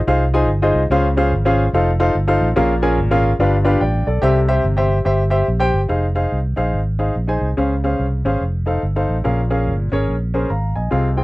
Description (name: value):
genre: uptempo gospel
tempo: 144 BPM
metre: 4/4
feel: swing 62% on 8ths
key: F minor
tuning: A4 = 440 Hz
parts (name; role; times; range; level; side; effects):
- warm baby grand piano; accompaniment; 0.1-11.2 s; G2 to Bb5; -18 LUFS; left 1 dB; none
- fingered electric bass; bass; 0.1-11.2 s; F1 to Db2; -18 LUFS; equal; tube saturation
room: little or no reverb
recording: dry, close 1970s-style studio recording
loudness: -15 LUFS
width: side -19 dB against mid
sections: 0.0-5.9 A section; 5.9-11.2 B section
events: none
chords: 0.0 Fm7; 0.9 Dbmaj7; 1.7 F7; 2.6 Bbm7; 3.4 G7; 4.2 C; 5.9 Fm7; 7.6 Dbmaj7; 8.4 F7; 9.2 Bbm7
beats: 0.08 0.49 | 0.91 1.32 1.74 2.15 | 2.57 2.98 3.40 3.82 | 4.23 4.65 5.06 5.48 | 5.90 6.32 6.73 7.15 | 7.57 7.99 8.41 8.83 | 9.25 9.67 10.09 10.50 | 10.92